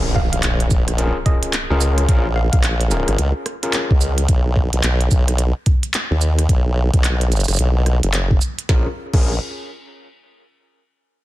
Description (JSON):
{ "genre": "glitch hop", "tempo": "109 BPM", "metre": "4/4", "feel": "swing 62% on 16ths", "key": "Bb phrygian", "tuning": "A4 = 439 Hz", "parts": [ { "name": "overdriven tine electric piano", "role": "stabs", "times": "0.0-3.9, 8.7-9.3 s", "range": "C#4 to A#4", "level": "-26 LUFS", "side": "left 2 dB", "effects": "medium tremolo, sidechain pumping, digital delay" }, { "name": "formant-sweep wobble bass", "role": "bass", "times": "0.0-9.4 s", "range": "F#1 to D#2", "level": "-17 LUFS", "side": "equal", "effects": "chorus" }, { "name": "impact", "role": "sound effects", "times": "0.0-2.1 s", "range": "none", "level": "-27 LUFS", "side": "equal", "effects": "none" }, { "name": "woody wave-folded pluck", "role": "melody", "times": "0.2-2.6 s", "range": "Eb5 to F5", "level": "-30 LUFS", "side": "right 1 dB", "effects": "chorus, digital delay" }, { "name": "electronic kick drum", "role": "drums", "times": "0.2-9.2 s", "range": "none", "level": "-16 LUFS", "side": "equal", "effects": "none" }, { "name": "glitchy drum kit", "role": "drums", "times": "0.3-9.2 s", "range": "crash cymbal, handclaps, hi-hat, rim click, shaker, snare drum", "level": "-24 LUFS", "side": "right 1 dB", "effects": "none" } ], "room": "digital ambience", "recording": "dense, heavily limited modern master", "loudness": "-15 LUFS", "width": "side -16 dB against mid", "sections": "0.0-8.7 A section; 8.7-10.9 B section", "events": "impact 0.0-2.1", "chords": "0.0 Bbm7; 4.3 N.C.; 8.7 Bbm7" }